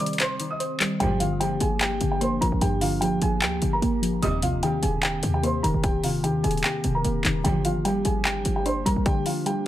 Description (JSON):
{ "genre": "hip hop, trap", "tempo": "149 BPM", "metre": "4/4", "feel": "half-time", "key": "G phrygian", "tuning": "A4 = 445 Hz", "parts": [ { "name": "dark concert grand piano", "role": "melody", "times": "0.0-9.6 s", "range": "F4 to Eb6", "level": "-27 LUFS", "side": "equal", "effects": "tape echo" }, { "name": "soft round pluck", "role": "accompaniment", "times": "0.0-9.7 s", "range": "Eb2 to C5", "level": "-27 LUFS", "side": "equal", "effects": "chorus, tape echo" }, { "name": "warbly tape-like pad", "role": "sustained chords", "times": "0.0-9.7 s", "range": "Eb3 to G4", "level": "-34 LUFS", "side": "left 1 dB", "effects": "chorus, built-in reverb" }, { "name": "trap drum kit", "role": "drums", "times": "0.0-9.6 s", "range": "handclaps, hi-hat, kick drum", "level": "-27 LUFS", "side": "equal", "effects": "none" }, { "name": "warm chamber string section", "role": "stabs", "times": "1.0-1.2, 4.2-4.4, 7.4-7.6 s", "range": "D2 to G3", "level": "-34 LUFS", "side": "right 3 dB", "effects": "tape echo" }, { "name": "short 808-style bass", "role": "bass", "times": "1.0-9.1 s", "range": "Eb1 to Eb2", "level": "-28 LUFS", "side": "equal", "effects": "none" } ], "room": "light reverb, digital ambience", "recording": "echo-heavy mix", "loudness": "-22 LUFS", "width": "side -13 dB against mid", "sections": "0.0-1.0 A section; 1.0-9.7 A section", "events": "break 0.0-1.0", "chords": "0.0 Cm; 1.0 Gm7; 4.2 Eb6; 7.4 Gm7", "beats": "0.20 0.60 | 1.00 1.41 1.81 2.21 | 2.62 3.02 3.42 3.82 | 4.23 4.63 5.03 5.43 | 5.84 6.24 6.64 7.04 | 7.45 7.85 8.25 8.65 | 9.06 9.46" }